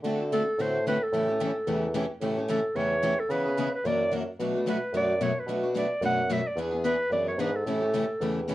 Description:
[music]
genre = acoustic string swing (jazz manouche)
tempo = 220 BPM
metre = 4/4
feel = swing 56% on 8ths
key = A mixolydian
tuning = A4 = 440 Hz
[part]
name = picked steel-string acoustic guitar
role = accompaniment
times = 0.0-8.5 s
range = B2 to A4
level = -31 LUFS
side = left 3 dB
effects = none
[part]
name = picked swing-style acoustic guitar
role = accompaniment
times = 0.0-8.5 s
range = B2 to B4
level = -36 LUFS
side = right 5 dB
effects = none
[part]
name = mellow bassoon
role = bass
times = 0.0-8.5 s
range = E2 to D3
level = -30 LUFS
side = equal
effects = none
[part]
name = warm clarinet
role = melody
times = 0.3-8.5 s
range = A4 to F#5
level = -28 LUFS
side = right 1 dB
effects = none
[sound]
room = light reverb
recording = worn, warbling old tape, cassette tape, warbly pitch drift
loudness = -25 LUFS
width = side -15 dB against mid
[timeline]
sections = 0.0-8.5 A section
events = none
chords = 0.0 D7; 1.1 A7; 3.3 C#m7; 3.8 F#aug7; 4.4 Bm7; 6.6 E7; 7.7 A7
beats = | 0.04 0.31 0.58 0.85 | 1.13 1.40 1.67 1.94 | 2.21 2.48 2.76 3.03 | 3.30 3.57 3.85 4.12 | 4.39 4.66 4.93 5.21 | 5.48 5.75 6.02 6.30 | 6.57 6.84 7.11 7.39 | 7.66 7.93 8.20 8.48

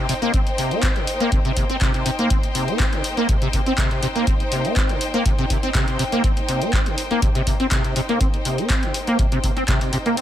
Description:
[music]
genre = acid house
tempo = 122 BPM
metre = 4/4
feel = straight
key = C minor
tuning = A4 = 441 Hz
[part]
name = acid bass, saw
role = riff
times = 0.0-10.2 s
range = C3 to C4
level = -22 LUFS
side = equal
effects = ensemble chorus, sidechain pumping, digital delay
[part]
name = clear studio string section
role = texture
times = 0.0-10.2 s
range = Eb4 to G5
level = -27 LUFS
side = left 2 dB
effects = sidechain pumping
[part]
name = punchy analog drum machine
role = drums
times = 0.1-10.2 s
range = handclaps, hi-hat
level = -27 LUFS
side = left 1 dB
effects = none
[part]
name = electronic kick drum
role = drums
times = 0.3-9.8 s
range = none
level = -21 LUFS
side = equal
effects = none
[sound]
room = light reverb, digital ambience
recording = none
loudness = -18 LUFS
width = side -11 dB against mid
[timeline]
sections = 0.0-10.2 A section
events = none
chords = 0.0 Cm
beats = 0.34 0.83 | 1.32 1.81 2.30 2.80 | 3.29 3.78 4.27 4.76 | 5.25 5.75 6.24 6.73 | 7.22 7.71 8.21 8.70 | 9.19 9.68 10.17

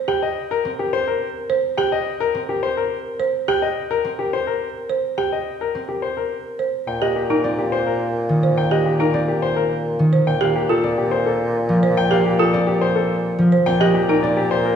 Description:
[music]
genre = classical, minimalist pattern music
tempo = 106 BPM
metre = 3/4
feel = straight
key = unclear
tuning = A4 = 440 Hz
[part]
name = concert harp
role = accompaniment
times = 0.0-14.8 s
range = Eb3 to C4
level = -22 LUFS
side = equal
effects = none
[part]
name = clear grand piano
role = melody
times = 0.1-14.8 s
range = G4 to G5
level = -22 LUFS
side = left 5 dB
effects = none
[part]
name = folk marimba with medium hard mallets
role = arpeggios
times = 0.1-14.3 s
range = Eb4 to C5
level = -22 LUFS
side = right 6 dB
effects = none
[part]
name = clear bassoon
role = bass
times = 6.9-14.8 s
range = Bb2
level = -22 LUFS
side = equal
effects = none
[sound]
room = wet recital hall reverb, RT60 1.8 s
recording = heard from further back in the room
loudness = -17 LUFS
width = side -8 dB against mid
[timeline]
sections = 0.0-6.9 A section; 6.9-14.8 B section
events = none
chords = 0.1 C7(no3); 6.9 Cm7/Bb; 10.3 Fadd9/Bb; 13.7 Cm7/Bb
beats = | 0.08 0.65 1.21 | 1.78 2.35 2.91 | 3.48 4.04 4.61 | 5.18 5.74 6.31 | 6.88 7.44 8.01 | 8.57 9.14 9.71 | 10.27 10.84 11.40 | 11.97 12.54 13.10 | 13.67 14.23

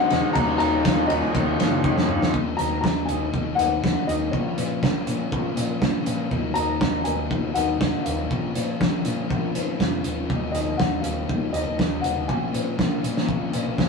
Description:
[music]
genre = indie rock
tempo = 121 BPM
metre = 4/4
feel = straight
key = Eb minor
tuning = A4 = 437 Hz
[part]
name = dark upright piano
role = melody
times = 0.0-13.7 s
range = Db5 to Bb5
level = -27 LUFS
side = left 3 dB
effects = none
[part]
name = glockenspiel with soft plastic mallets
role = second line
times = 0.0-1.8 s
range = Bb5 to Gb6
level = -42 LUFS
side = left 2 dB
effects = none
[part]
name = overdriven combo organ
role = sustained chords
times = 0.0-2.3 s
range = Ab3 to Db5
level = -33 LUFS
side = left 3 dB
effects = none
[part]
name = raw garage guitar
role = riff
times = 0.0-2.3 s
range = Eb2 to Ab3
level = -24 LUFS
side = equal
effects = overdrive
[part]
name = sludgy distorted guitar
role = riff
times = 0.0-13.9 s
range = Eb2 to F4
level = -29 LUFS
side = left 7 dB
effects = overdrive
[part]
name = growling picked electric bass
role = bass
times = 0.0-13.9 s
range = Eb1 to Bb2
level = -29 LUFS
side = equal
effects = overdrive
[part]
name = loose indie drum kit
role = drums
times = 0.1-13.9 s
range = hi-hat, kick drum, ride cymbal, snare drum, toms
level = -24 LUFS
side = right 1 dB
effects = none
[sound]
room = moderate studio reverb, RT60 0.7 s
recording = rough rehearsal-room recording, warm saturation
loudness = -21 LUFS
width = side -4 dB against mid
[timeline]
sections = 0.0-2.3 A section; 2.3-10.3 B section; 10.3-13.9 C section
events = drum fill 1.8-2.3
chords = 0.4 Ebm7; 2.3 Ebm; 4.3 Bbm; 6.3 Ebm; 8.3 Bbm; 10.3 Ebmadd9; 12.3 Bbm7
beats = | 0.35 0.85 1.34 1.84 | 2.33 2.83 3.33 3.83 | 4.32 4.82 5.32 5.82 | 6.31 6.81 7.31 7.80 | 8.30 8.80 9.30 9.80 | 10.29 10.79 11.29 11.79 | 12.29 12.79 13.28 13.78

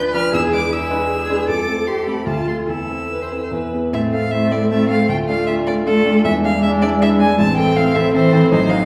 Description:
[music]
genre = quick classical-period movement for piano quartet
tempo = 156 BPM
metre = 3/4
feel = rubato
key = A minor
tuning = A4 = 439 Hz
[part]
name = rich violin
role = melody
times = 0.0-8.8 s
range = A4 to F6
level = -25 LUFS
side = equal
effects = none
[part]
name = rich cello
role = second line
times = 0.0-8.8 s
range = E3 to B4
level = -22 LUFS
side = equal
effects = none
[part]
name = rich viola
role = accompaniment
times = 0.0-8.8 s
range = C4 to C5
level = -27 LUFS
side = equal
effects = none
[part]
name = warm baby grand piano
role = accompaniment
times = 0.0-8.8 s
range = A1 to B4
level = -22 LUFS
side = equal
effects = none
[sound]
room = wet recital hall reverb, RT60 1.4 s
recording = heard from further back in the room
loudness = -17 LUFS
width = mono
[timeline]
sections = 0.0-3.9 A section; 3.9-8.8 B section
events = none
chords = 0.3 E7; 1.5 F; 2.3 Dm; 2.7 Am/E; 3.5 E; 3.9 Am; 5.1 Dm; 6.2 E7; 7.4 Am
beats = | 0.34 0.72 1.10 | 1.49 1.88 2.27 | 2.68 3.10 3.51 | 3.92 4.32 4.70 | 5.09 5.48 5.86 | 6.25 6.63 7.01 | 7.39 7.77 8.14 | 8.52

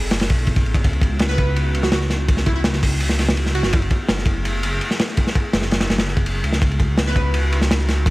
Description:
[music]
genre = drum and bass, jungle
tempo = 166 BPM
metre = 4/4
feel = straight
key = C# minor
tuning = A4 = 440 Hz
[part]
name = airy breathy pad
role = sustained chords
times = 0.0-8.1 s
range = A3 to A4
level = -31 LUFS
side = equal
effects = chorus
[part]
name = dark detuned saw bass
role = bass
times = 0.0-8.1 s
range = F#1 to C#2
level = -21 LUFS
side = equal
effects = tube saturation
[part]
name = crunchy breakbeat drum kit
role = drums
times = 0.1-8.1 s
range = hi-hat, kick drum, ride cymbal, snare drum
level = -19 LUFS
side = equal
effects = none
[part]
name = plucky unison lead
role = melody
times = 1.3-3.8, 7.1-7.6 s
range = E4 to B4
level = -27 LUFS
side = right 2 dB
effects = dub echo
[sound]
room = small room ambience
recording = vinyl crackle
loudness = -16 LUFS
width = side -20 dB against mid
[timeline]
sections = 0.0-8.1 A section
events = none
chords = 0.0 F#m11; 0.8 C#m11; 3.7 F#m11; 6.6 C#m11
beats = 0.11 0.47 | 0.84 1.20 1.56 1.92 | 2.28 2.64 3.00 3.37 | 3.73 4.09 4.45 4.81 | 5.17 5.54 5.90 6.26 | 6.62 6.98 7.34 7.70 | 8.06

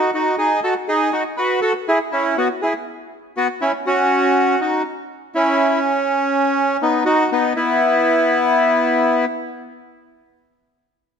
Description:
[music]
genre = tango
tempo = 121 BPM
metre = 4/4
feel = rubato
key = unclear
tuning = A4 = 440 Hz
[part]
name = bandoneon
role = solo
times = 0.0-9.3 s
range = B3 to B4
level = -16 LUFS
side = equal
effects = none
[sound]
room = moderate concert hall reverb, RT60 1.8 s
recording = none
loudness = -16 LUFS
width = side -7 dB against mid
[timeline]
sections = 0.0-9.8 A section; 9.8-11.2 B section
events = none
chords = 0.0 D#dim; 1.8 E5; 3.8 F#5; 5.8 B; 7.8 N.C.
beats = 0.36 0.85 1.35 | 1.85 2.35 2.85 3.34 | 3.84 4.33 4.82 5.32 | 5.81 6.30 6.79 7.28 | 7.78 8.27 8.77

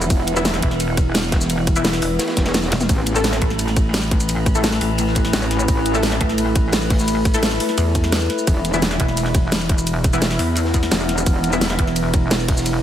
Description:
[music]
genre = dark technical drum and bass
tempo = 172 BPM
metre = 4/4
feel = straight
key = unclear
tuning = A4 = 440 Hz
[part]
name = metallic inharmonic drone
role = sustained chords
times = 0.0-12.8 s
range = E3 to B4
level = -24 LUFS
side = left 1 dB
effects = chorus, built-in reverb, phaser, sidechain pumping
[part]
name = metallic wobble bass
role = bass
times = 0.0-6.2, 8.5-11.8 s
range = E1 to A1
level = -21 LUFS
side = equal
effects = distortion, chorus, overdrive
[part]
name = crunchy breakbeat drum kit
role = drums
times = 0.0-12.7 s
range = hi-hat, ride cymbal, snare drum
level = -32 LUFS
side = equal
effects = none
[part]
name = dubstep drum kit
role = drums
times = 0.0-12.7 s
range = hi-hat, ride cymbal, shaker, snare drum, toms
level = -23 LUFS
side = equal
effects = none
[part]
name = electronic kick drum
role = drums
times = 0.1-12.6 s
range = none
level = -19 LUFS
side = equal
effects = overdrive
[part]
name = orchestra-hit-like synth stab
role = stabs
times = 0.4-11.6 s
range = E3 to A4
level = -26 LUFS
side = left 2 dB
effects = built-in reverb, dub echo
[part]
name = pulsing pluck wobble bass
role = bass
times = 0.6-12.8 s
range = E1 to E2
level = -21 LUFS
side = equal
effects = chorus
[sound]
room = light reverb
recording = heavily compressed radio sound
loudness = -16 LUFS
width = side -10 dB against mid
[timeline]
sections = 0.0-12.8 A section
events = drum fill 2.7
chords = 0.0 E5; 2.9 A5; 8.5 E5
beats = | 0.10 0.45 0.80 1.15 | 1.50 1.85 2.19 2.54 | 2.89 3.24 3.59 3.94 | 4.29 4.64 4.99 5.33 | 5.68 6.03 6.38 6.73 | 7.08 7.43 7.78 8.12 | 8.47 8.82 9.17 9.52 | 9.87 10.22 10.57 10.92 | 11.27 11.61 11.96 12.31 | 12.66

